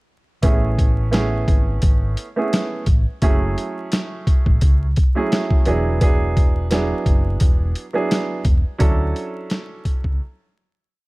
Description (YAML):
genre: hip hop, boom-bap hip-hop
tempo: 86 BPM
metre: 4/4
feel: swing 54% on 16ths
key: A major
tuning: A4 = 439 Hz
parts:
  - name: warm upright piano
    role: accompaniment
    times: 0.4-10.2 s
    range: F#3 to A4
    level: -23 LUFS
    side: right 3 dB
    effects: high-pass filter, low-pass filter
  - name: hollow-body short-scale fingered electric bass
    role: bass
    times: 0.4-10.2 s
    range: E1 to D2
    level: -21 LUFS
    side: equal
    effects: none
  - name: boom bap sampler-style drum kit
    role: drums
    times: 0.4-10.2 s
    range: hi-hat, kick drum, snare drum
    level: -17 LUFS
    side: equal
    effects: none
room: little or no reverb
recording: dark, warm production, vinyl crackle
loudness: -16 LUFS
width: side -23 dB against mid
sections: 0.4-11.1 verse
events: fade-out 8.8-11.1; break 10.2-11.1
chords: 0.4 Amaj9; 3.2 F#m9; 5.7 E9; 8.8 Dmaj9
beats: | 0.43 1.13 1.83 2.53 | 3.22 3.92 4.62 5.32 | 6.01 6.71 7.41 8.11 | 8.81 9.50 10.20